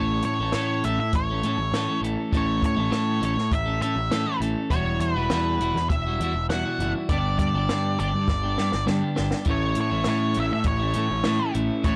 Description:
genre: indie rock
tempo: 101 BPM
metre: 4/4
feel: straight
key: A mixolydian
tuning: A4 = 440 Hz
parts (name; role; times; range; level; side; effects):
- octave-fuzz lead guitar; melody; 0.0-12.0 s; B4 to F#5; -30 LUFS; equal; distortion
- clean electric guitar; riff; 0.0-12.0 s; E2 to A4; -29 LUFS; equal; none
- fuzz picked electric bass; bass; 0.0-12.0 s; E1 to A2; -30 LUFS; equal; overdrive
- compact cocktail drum kit; drums; 0.2-12.0 s; hi-hat, kick drum, snare drum; -30 LUFS; equal; none
- overdriven semi-hollow guitar; riff; 9.5-12.0 s; A2 to E4; -37 LUFS; equal; none
room: little or no reverb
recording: dry, gritty hardware recording, transformer saturation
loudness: -24 LUFS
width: mono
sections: 0.0-12.0 A section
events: drum fill 8.3-9.5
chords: 0.0 A; 4.7 Emadd9; 7.1 G; 9.5 A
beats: 0.53 1.13 1.72 | 2.32 2.92 3.51 4.11 | 4.70 5.30 5.89 6.49 | 7.09 7.68 8.28 8.87 | 9.47 10.06 10.66 11.26 | 11.85

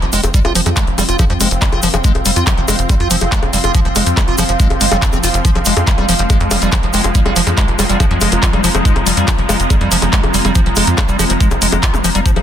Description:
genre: psychedelic trance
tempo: 141 BPM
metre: 4/4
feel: straight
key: F minor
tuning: A4 = 438 Hz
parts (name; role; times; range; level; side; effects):
- swarming drone; sustained chords; 0.1-12.4 s; F3 to C4; -21 LUFS; left 1 dB; built-in reverb, sidechain pumping
- liquid acid bass; riff; 0.0-12.4 s; F3 to F4; -19 LUFS; moving between left 6 dB and right 5 dB; chorus, auto-pan, sidechain pumping, ping-pong delay
- tight sequencer bass; bass; 0.0-12.4 s; F1 to F2; -18 LUFS; equal; none
- drum and bass drum kit; drums; 0.0-12.4 s; bongos, handclaps, hi-hat; -18 LUFS; left 2 dB; none
- ethereal airy pad; texture; 0.1-12.4 s; C4 to C6; -22 LUFS; right 3 dB; ensemble chorus, built-in reverb, sidechain pumping
- vowel-sweep wobble bass; second line; 0.1-1.9, 6.9-9.0 s; C4 to F4; -29 LUFS; left 4 dB; none
- tube shaker; percussion; 0.1-12.3 s; none; -24 LUFS; right 5 dB; none
- electronic kick drum; drums; 0.3-12.3 s; none; -14 LUFS; equal; none
room: little or no reverb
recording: dense, heavily limited modern master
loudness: -11 LUFS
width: side -10 dB against mid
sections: 0.0-12.4 A section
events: none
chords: 0.0 F5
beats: | 0.34 0.77 1.19 1.62 | 2.04 2.47 2.90 3.32 | 3.75 4.17 4.60 5.02 | 5.45 5.87 6.30 6.72 | 7.15 7.58 8.00 8.43 | 8.85 9.28 9.70 10.13 | 10.55 10.98 11.40 11.83 | 12.26

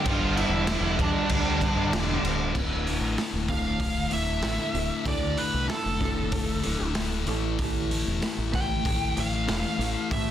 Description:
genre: quiet-loud alternative rock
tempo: 95 BPM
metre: 4/4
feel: straight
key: D minor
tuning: A4 = 439 Hz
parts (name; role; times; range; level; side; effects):
- nasal lead guitar with a parked wah; melody; 0.0-10.3 s; D4 to G5; -30 LUFS; right 2 dB; overdrive, slapback echo
- distorted electric guitar; riff; 0.0-2.5 s; G2 to G3; -32 LUFS; right 3 dB; overdrive
- thick fuzz guitar; riff; 0.0-10.3 s; D2 to A3; -31 LUFS; left 7 dB; distortion
- thick fuzz guitar; riff; 0.0-2.5 s; G2 to G3; -32 LUFS; right 13 dB; distortion
- growling fingered electric bass; bass; 0.1-10.3 s; D1 to A2; -31 LUFS; equal; overdrive
- raw garage drum kit; drums; 0.1-10.3 s; crash cymbal, hi-hat, kick drum, snare drum; -29 LUFS; equal; none
- electric guitar through a small old amp; arpeggios; 2.6-10.3 s; D2 to A3; -36 LUFS; right 4 dB; wide subtle chorus, slapback echo
room: light reverb, studio ambience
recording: dense, heavily limited modern master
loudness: -24 LUFS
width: side -11 dB against mid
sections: 0.0-2.5 A section; 2.5-10.3 B section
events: none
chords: 0.0 G5; 2.5 Dm; 7.3 A5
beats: | 0.06 0.68 1.30 1.92 | 2.55 3.17 3.80 4.43 | 5.06 5.69 6.32 6.95 | 7.58 8.22 8.85 9.48 | 10.12

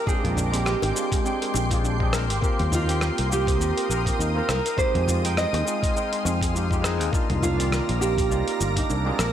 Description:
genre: sunset chillout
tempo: 102 BPM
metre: 4/4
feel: swing 57% on 16ths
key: C minor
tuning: A4 = 438 Hz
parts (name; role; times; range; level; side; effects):
- nylon-string guitar; melody; 0.0-9.3 s; F4 to Eb5; -28 LUFS; right 4 dB; digital delay
- shimmering ambient pad; sustained chords; 0.0-9.3 s; Ab3 to Eb6; -31 LUFS; left 1 dB; chorus, built-in reverb
- steel pan; arpeggios; 0.0-9.3 s; C4 to Eb5; -33 LUFS; right 1 dB; tape echo
- barky tine electric piano; accompaniment; 0.1-9.3 s; Eb3 to G5; -30 LUFS; moving between left 6 dB and right 6 dB; auto-pan, tape echo
- dusty soul sampler-style drum kit; drums; 0.1-9.3 s; hi-hat, rim click, shaker, toms; -30 LUFS; equal; studio reverb
- electronic kick drum; drums; 0.1-8.9 s; none; -26 LUFS; equal; studio reverb
- fingered electric bass; bass; 0.2-9.3 s; G1 to F2; -25 LUFS; equal; none
- bongos; percussion; 0.8-1.7, 5.5-6.4 s; none; -35 LUFS; left 8 dB; none
room: light reverb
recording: none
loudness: -21 LUFS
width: side -10 dB against mid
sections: 0.0-9.3 A section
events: none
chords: 0.0 Bb13; 2.4 Eb6; 4.8 Fm7; 7.1 Cm11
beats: | 0.07 0.66 1.25 1.84 | 2.42 3.01 3.60 4.19 | 4.78 5.37 5.95 6.54 | 7.13 7.72 8.31 8.89

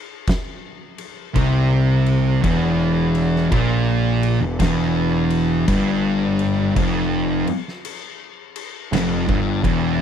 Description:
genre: stoner and doom metal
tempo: 56 BPM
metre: 4/4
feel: swing 66% on 8ths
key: E phrygian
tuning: A4 = 441 Hz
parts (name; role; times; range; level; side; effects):
- oversized low-tuned drum kit; drums; 0.3-9.8 s; crash cymbal, kick drum, snare drum; -26 LUFS; equal; none
- thick fuzz guitar; riff; 1.3-10.0 s; E2 to C3; -21 LUFS; left 8 dB; distortion
- thick fuzz guitar; riff; 1.3-10.0 s; E2 to C3; -21 LUFS; right 8 dB; distortion
- fuzz picked electric bass; bass; 1.4-10.0 s; E1 to C2; -23 LUFS; equal; overdrive
room: studio reverb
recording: dry, close 1970s-style studio recording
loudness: -17 LUFS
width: side -8 dB against mid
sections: 0.0-10.0 A section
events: none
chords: 0.0 N.C.; 2.4 Em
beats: 0.27 1.35 | 2.43 3.51 4.59 5.67 | 6.75 7.84 8.92 10.00

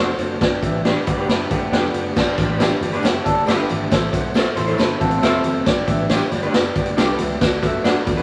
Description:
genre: uptempo 1960s-style soul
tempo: 137 BPM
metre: 4/4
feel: straight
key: G major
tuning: A4 = 440 Hz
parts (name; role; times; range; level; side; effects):
- clear horn section; second line; 0.0-7.3 s; D3 to A4; -32 LUFS; equal; none
- clear baby grand piano; accompaniment; 0.0-8.2 s; G2 to F#5; -28 LUFS; equal; none
- electric guitar through a small old amp; stabs; 0.0-8.2 s; D4 to C5; -28 LUFS; equal; spring reverb
- vintage muted picked electric bass; bass; 0.0-8.2 s; F1 to F#2; -30 LUFS; equal; none
- raw garage drum kit; drums; 0.1-8.2 s; crash cymbal, hi-hat, kick drum, snare drum; -22 LUFS; equal; none
- electric guitar through a small old amp; riff; 1.1-5.6 s; B3 to D5; -26 LUFS; equal; none
- congas; percussion; 2.2-8.2 s; none; -37 LUFS; equal; none
- tambourine; percussion; 2.2-8.2 s; none; -43 LUFS; equal; none
room: moderate large studio reverb, RT60 0.8 s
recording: none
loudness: -19 LUFS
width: mono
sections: 0.0-2.2 A section; 2.2-8.2 A section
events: none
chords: 0.4 G; 3.9 Am; 5.7 G; 7.4 D6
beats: | 0.41 0.85 1.29 1.72 | 2.16 2.60 3.04 3.48 | 3.92 4.35 4.79 5.23 | 5.67 6.10 6.54 6.98 | 7.41 7.85

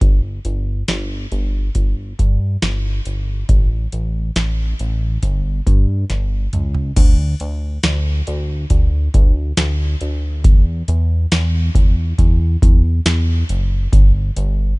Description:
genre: dream pop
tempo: 69 BPM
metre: 4/4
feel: straight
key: unclear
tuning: A4 = 440 Hz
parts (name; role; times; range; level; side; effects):
- chorused synth bass; bass; 0.0-14.7 s; F#1 to G2; -18 LUFS; equal; none
- booming analog drum machine; drums; 0.0-14.6 s; crash cymbal, hi-hat, kick drum, snare drum, tambourine, toms; -14 LUFS; equal; none
room: little or no reverb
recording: nothing above 10.7 kHz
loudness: -15 LUFS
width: side -26 dB against mid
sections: 0.0-7.0 A section; 7.0-14.8 B section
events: drum fill 6.1-7.0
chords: none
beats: | 0.01 0.88 1.75 2.62 | 3.49 4.36 5.23 6.10 | 6.97 7.84 8.71 9.58 | 10.45 11.31 12.19 13.05 | 13.92

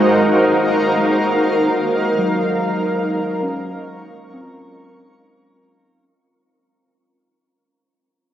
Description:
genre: ambient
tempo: 50 BPM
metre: 4/4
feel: straight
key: unclear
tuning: A4 = 440 Hz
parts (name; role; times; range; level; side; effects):
- granular cloud pad; sustained chords; 0.0-5.9 s; Ab3 to Db6; -16 LUFS; equal; built-in reverb
- muted felt-like synth keys; arpeggios; 0.0-7.1 s; Gb3 to Bb5; -24 LUFS; equal; chorus, diffuse ambient delay
- pedal harmonium; drone; 0.0-6.0 s; Bb3 to Bb4; -25 LUFS; equal; none
room: wet huge ambient reverb, RT60 7.2 s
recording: worn, warbling old tape, cassette tape, warbly pitch drift, lossy compression artefacts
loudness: -15 LUFS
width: side -11 dB against mid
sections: 0.0-5.9 A section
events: fade-out 0.0-5.9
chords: 0.0 Ab13; 1.1 Ebm9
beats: | 1.07 2.27 3.48 4.70

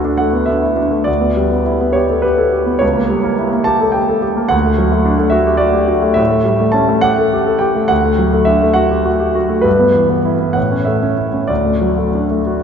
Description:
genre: classical, romantic character piece for solo piano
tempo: 61-73 BPM (dotted quarters)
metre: 6/8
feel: rubato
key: D major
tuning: A4 = 440 Hz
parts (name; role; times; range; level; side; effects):
- clear concert grand piano; solo; 0.0-12.6 s; C#2 to A5; -12 LUFS; equal; none
room: wet cathedral reverb, RT60 4.6 s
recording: recorded in a church or concert hall, nothing above 7.5 kHz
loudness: -12 LUFS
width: side -7 dB against mid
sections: 0.0-12.6 A section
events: none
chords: 0.0 D; 1.1 Em7/D; 2.8 C#dim7; 4.5 D; 6.2 A7; 7.9 D; 9.7 Em/G; 10.6 A; 11.5 D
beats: 0.21 | 1.08 1.96 | 2.82 3.69 | 4.53 5.37 | 6.20 7.05 | 7.91 8.77 | 9.65 10.56 | 11.50 12.46

